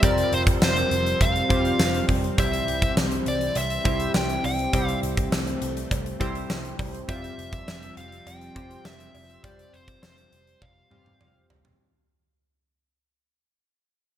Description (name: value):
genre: 1980s-style pop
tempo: 102 BPM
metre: 4/4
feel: straight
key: unclear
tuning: A4 = 440 Hz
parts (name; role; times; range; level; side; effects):
- dark smooth lead guitar; melody; 0.0-11.5 s; C5 to G5; -28 LUFS; left 1 dB; overdrive
- chorused retro synth keys; accompaniment; 0.0-11.8 s; C3 to C5; -29 LUFS; equal; none
- phased analog pad; sustained chords; 0.0-11.8 s; E3 to C4; -34 LUFS; equal; phaser, chorus
- vintage muted picked electric bass; bass; 0.0-11.7 s; F1 to C2; -31 LUFS; right 1 dB; none
- huge arena drum kit; drums; 0.0-11.8 s; hi-hat, kick drum, snare drum, tambourine, toms; -25 LUFS; equal; gated reverb
- cowbell; percussion; 2.4-11.6 s; none; -41 LUFS; right 6 dB; none
room: moderate plate reverb, RT60 2.2 s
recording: bright 1980s-style digital production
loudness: -21 LUFS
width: side -11 dB against mid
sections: 0.0-11.8 A section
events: fade-out 0.0-11.8; drum fill 10.6-11.8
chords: 0.0 Fsus2; 2.4 C; 7.1 Fsus2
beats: | 0.03 0.62 1.21 1.79 | 2.38 2.97 3.56 4.15 | 4.74 5.32 5.91 6.50 | 7.09 7.68 8.26 8.85 | 9.44 10.03 10.62 11.21